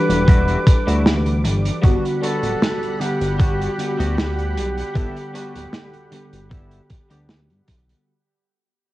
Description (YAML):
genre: vaporwave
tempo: 77 BPM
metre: 4/4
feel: straight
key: G major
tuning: A4 = 440 Hz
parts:
  - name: mellow flugelhorn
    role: melody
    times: 0.0-7.3 s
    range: G4 to B4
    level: -26 LUFS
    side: equal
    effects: cassette tape, tape echo
  - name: FM electric piano with soft pad layer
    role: accompaniment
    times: 0.0-8.1 s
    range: D3 to F#5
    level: -25 LUFS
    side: equal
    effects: tremolo, wide subtle chorus, cassette tape
  - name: lush unison pad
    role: sustained chords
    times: 0.0-8.0 s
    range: G3 to D6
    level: -30 LUFS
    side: right 1 dB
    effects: chorus, cassette tape, plate reverb
  - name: chorused synth bass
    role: bass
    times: 0.1-7.9 s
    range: D1 to G2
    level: -21 LUFS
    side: equal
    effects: none
  - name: loose indie drum kit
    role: drums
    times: 0.1-8.0 s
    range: hi-hat, snare drum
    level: -24 LUFS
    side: right 1 dB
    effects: cassette tape
  - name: clean electric guitar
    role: riff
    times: 0.3-7.7 s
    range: G3 to G4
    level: -31 LUFS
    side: left 1 dB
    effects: analog chorus, cassette tape, tape echo
  - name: electronic kick drum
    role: drums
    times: 0.3-7.8 s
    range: none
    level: -14 LUFS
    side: equal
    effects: cassette tape
room: light reverb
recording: home recording on cassette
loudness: -16 LUFS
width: side -17 dB against mid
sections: 0.0-8.1 A section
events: fade-out 0.0-8.1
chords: 0.0 Em9; 1.8 Gmaj7